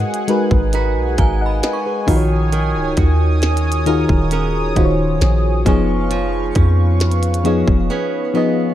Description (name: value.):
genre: contemporary R&B.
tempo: 67 BPM.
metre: 4/4.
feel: straight.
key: Eb minor.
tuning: A4 = 440 Hz.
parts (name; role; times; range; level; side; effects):
mellow FM electric piano; accompaniment; 0.0-8.7 s; Eb3 to Ab5; -19 LUFS; left 2 dB; chorus.
chorused pulse-width pad; sustained chords; 0.0-8.7 s; Ab4 to Eb6; -25 LUFS; right 1 dB; sidechain pumping.
flamenco guitar; arpeggios; 0.0-8.7 s; Eb3 to Cb5; -24 LUFS; right 8 dB; digital delay.
soft 808-style bass; bass; 0.0-7.9 s; Db1 to F2; -17 LUFS; equal; none.
minimal click drum kit; drums; 0.1-7.9 s; hi-hat, kick drum, snare drum; -18 LUFS; equal; overdrive.
synth chime; texture; 1.2-8.7 s; F5 to Db6; -31 LUFS; right 2 dB; ensemble chorus, digital delay.
room: little or no reverb.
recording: dark, warm production.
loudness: -14 LUFS.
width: side -12 dB against mid.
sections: 0.0-8.7 A section.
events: break 7.9-8.7.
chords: 0.0 Abm7; 2.1 Ebm7; 5.7 Db7/F.